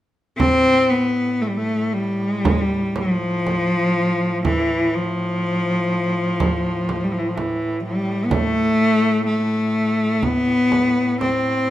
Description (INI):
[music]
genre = caucasian folk, Caucasian lament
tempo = 58-63 BPM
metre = 4/4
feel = rubato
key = A minor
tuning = A4 = 440 Hz
[part]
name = rich cello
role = melody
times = 0.4-11.7 s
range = E3 to C4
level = -18 LUFS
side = left 1 dB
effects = none
[part]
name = warm duduk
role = drone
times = 0.4-11.7 s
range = A2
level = -30 LUFS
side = right 2 dB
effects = none
[part]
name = frame drum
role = percussion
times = 0.4-11.4 s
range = none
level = -24 LUFS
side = right 3 dB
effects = none
[sound]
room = moderate recital hall reverb, RT60 1.3 s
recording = minimal, uncompressed stereo recording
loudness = -17 LUFS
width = side -13 dB against mid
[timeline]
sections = 0.4-11.7 A section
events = none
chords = none